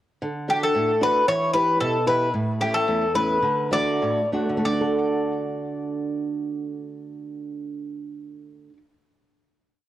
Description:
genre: greek folk, Greek bouzouki band.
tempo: 90-113 BPM.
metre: 2/4.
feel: straight.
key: D major.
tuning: A4 = 440 Hz.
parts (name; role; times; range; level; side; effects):
fingerpicked old ladder-braced acoustic guitar; accompaniment; 0.2-8.8 s; E2 to B4; -25 LUFS; right 2 dB; none.
Greek bouzouki; melody; 0.5-8.8 s; G4 to D5; -22 LUFS; left 2 dB; tape echo.
room: light reverb.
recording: worn, warbling old tape, cassette tape, warbly pitch drift.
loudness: -20 LUFS.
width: side -13 dB against mid.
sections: 0.2-4.7 A section; 4.7-7.3 final chord.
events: slowing down 2.3-4.7.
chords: 0.2 D; 1.3 Em; 2.3 A; 3.4 D.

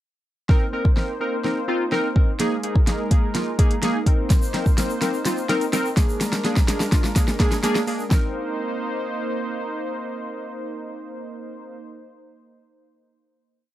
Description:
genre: dance-pop.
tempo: 126 BPM.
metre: 4/4.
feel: straight.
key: C minor.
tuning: A4 = 439 Hz.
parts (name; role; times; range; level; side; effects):
warm analog keys; accompaniment; 0.5-11.8 s; Bb3 to Bb4; -26 LUFS; equal; chorus, sidechain pumping.
warm analog pad; sustained chords; 0.5-11.8 s; Ab3 to C5; -30 LUFS; equal; chorus, sidechain pumping.
deep house drum kit; drums; 0.5-8.2 s; hi-hat, kick drum, snare drum; -19 LUFS; equal; none.
egg shaker; percussion; 4.3-8.3 s; none; -37 LUFS; right 3 dB; none.
room: light reverb.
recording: none.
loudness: -19 LUFS.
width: side -14 dB against mid.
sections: 0.5-8.1 build; 8.1-11.9 final chord.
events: build-up 0.5-8.1; drum fill 0.5-8.1.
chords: 0.5 Cm7; 2.4 Absus2; 4.1 Cm7; 6.0 Bb7; 8.1 Cm7.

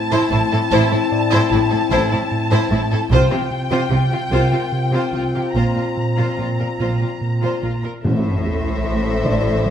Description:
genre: cinematic, suspense film score.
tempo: 75 BPM.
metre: 3/4.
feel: straight.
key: A phrygian.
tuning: A4 = 440 Hz.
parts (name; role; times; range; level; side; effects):
dark studio violin section; melody; 0.0-9.7 s; E5 to Bb5; -25 LUFS; left 2 dB; none.
mellow French horn section; sustained chords; 0.0-7.7 s; C4 to F4; -23 LUFS; left 6 dB; none.
smooth gliding synth bass; riff; 0.0-9.7 s; A2 to A3; -23 LUFS; right 2 dB; none.
rich studio violin section; second line; 0.1-9.7 s; E4 to C5; -25 LUFS; left 4 dB; none.
rich studio viola section; accompaniment; 0.1-9.7 s; E4 to A4; -26 LUFS; right 2 dB; none.
rich studio cello section; bass; 0.1-9.7 s; A2 to C3; -23 LUFS; right 1 dB; none.
rich studio double bass section; bass; 0.3-9.7 s; A1 to C2; -23 LUFS; right 2 dB; none.
warm baby grand piano; texture; 1.1-9.7 s; D4 to D5; -30 LUFS; left 2 dB; none.
timpani; percussion; 8.0-9.2 s; A2; -25 LUFS; left 1 dB; none.
sub drop; sound effects; 8.1-9.7 s; none; -26 LUFS; left 1 dB; none.
room: moderate scoring stage reverb, RT60 1.7 s.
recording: none.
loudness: -16 LUFS.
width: side -9 dB against mid.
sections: 0.0-8.0 A section; 8.0-9.7 B section.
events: impact 8.0-9.7.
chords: 0.0 Am; 3.1 Csus4; 5.6 Bbsus2; 8.0 Am.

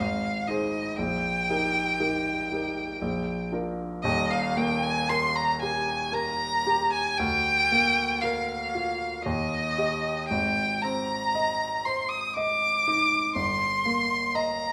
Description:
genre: classical, romantic duo for violin and grand piano.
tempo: 59 BPM.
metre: 3/4.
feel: rubato.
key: Eb major.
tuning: A4 = 444 Hz.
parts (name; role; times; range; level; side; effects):
rich violin; melody; 0.0-14.7 s; Eb5 to Eb6; -28 LUFS; equal; none.
warm grand piano; accompaniment; 0.0-14.7 s; Eb1 to Eb5; -32 LUFS; equal; none.
room: wet recital hall reverb, RT60 1.4 s.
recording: none.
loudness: -26 LUFS.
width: mono.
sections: 0.0-4.0 A section; 4.0-14.7 B section.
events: none.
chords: 0.0 Ab; 1.0 Eb/Bb; 3.0 Bb; 4.0 Eb; 7.2 Bb/D; 9.2 Eb; 10.3 Ab; 13.3 Eb/G.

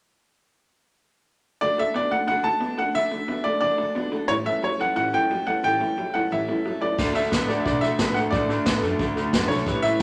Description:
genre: rockabilly.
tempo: 179 BPM.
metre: 4/4.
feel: straight.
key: D major.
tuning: A4 = 440 Hz.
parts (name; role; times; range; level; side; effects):
bright upright piano; melody; 1.6-10.0 s; C#5 to A5; -26 LUFS; equal; none.
picked steel-string acoustic guitar; accompaniment; 1.6-10.0 s; A2 to A4; -32 LUFS; equal; none.
electric guitar through a small old amp; riff; 1.6-10.0 s; A2 to B3; -30 LUFS; equal; spring reverb.
upright bass; bass; 7.0-10.0 s; A1 to B2; -34 LUFS; equal; none.
vintage brush drum kit; drums; 7.0-10.0 s; crash cymbal, hi-hat, kick drum, snare drum; -29 LUFS; equal; none.
room: moderate large studio reverb, RT60 0.9 s.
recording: none.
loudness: -24 LUFS.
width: mono.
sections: 1.6-7.0 A section; 7.0-10.0 B section.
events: none.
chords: 1.6 D; 4.3 A7; 7.0 D.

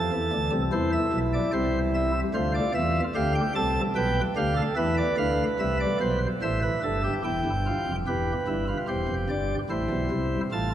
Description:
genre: classical, baroque-style 3-part fugue for pipe organ.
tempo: 74 BPM.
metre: 4/4.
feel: straight.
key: unclear.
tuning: A4 = 440 Hz.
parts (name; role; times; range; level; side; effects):
pipe organ, sparkling flutes; solo; 0.0-10.7 s; E1 to A5; -24 LUFS; equal; none.
room: wet cathedral reverb, RT60 5.7 s.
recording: in a vast, echoing space.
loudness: -24 LUFS.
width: side -11 dB against mid.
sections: 0.0-7.2 A section; 7.2-10.7 B section.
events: none.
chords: 0.0 F; 0.7 C; 2.3 Dm7; 4.0 G/B; 5.6 C; 7.2 Em; 8.9 C/E.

